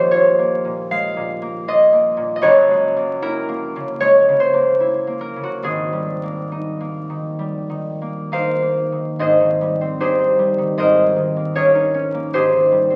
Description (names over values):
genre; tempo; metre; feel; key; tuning
classical, solo harp piece; 62-80 BPM; 4/4; rubato; Ab major; A4 = 439 Hz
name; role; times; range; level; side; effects
concert harp; solo; 0.0-13.0 s; Eb1 to F5; -18 LUFS; equal; none
room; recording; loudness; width
wet recital hall reverb, RT60 1.6 s; very old 78 rpm record, vinyl crackle; -18 LUFS; mono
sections
0.0-9.2 A section; 9.2-13.0 B section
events
none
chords
0.0 Eb9sus4; 2.4 Gb9; 5.6 Abmaj9; 9.2 Abmaj7; 10.8 Bbm11/Ab; 12.3 Abmaj7